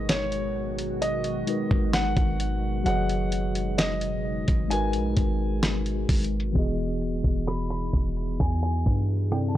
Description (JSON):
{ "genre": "contemporary R&B", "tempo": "65 BPM", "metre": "4/4", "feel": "straight", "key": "unclear", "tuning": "A4 = 439 Hz", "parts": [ { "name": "warm concert grand piano", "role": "melody", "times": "0.0-9.6 s", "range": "C#5 to B5", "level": "-32 LUFS", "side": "equal", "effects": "analog delay" }, { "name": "mellow tine electric piano", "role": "accompaniment", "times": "0.0-9.6 s", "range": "C3 to D#5", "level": "-31 LUFS", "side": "left 1 dB", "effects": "medium stereo tremolo" }, { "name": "deep dark ambient pad", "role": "sustained chords", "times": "0.0-9.6 s", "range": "A#2 to G#4", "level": "-34 LUFS", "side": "left 1 dB", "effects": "chorus, built-in reverb" }, { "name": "warm 808-style bass", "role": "bass", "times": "0.0-9.6 s", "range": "E1 to G2", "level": "-28 LUFS", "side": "equal", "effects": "none" }, { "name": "dusty soul sampler-style drum kit", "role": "drums", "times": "0.1-9.6 s", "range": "hi-hat, kick drum, rim click, snare drum", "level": "-25 LUFS", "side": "equal", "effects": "none" } ], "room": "little or no reverb", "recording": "dry, gritty hardware recording, cassette tape, low-pass filter", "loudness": "-23 LUFS", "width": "side -13 dB against mid", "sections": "0.0-6.6 A section; 6.6-9.6 B section", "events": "filter sweep 6.6-9.6", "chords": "0.0 G#m7; 2.9 B69/F#; 4.7 G#m9; 6.6 Emaj7" }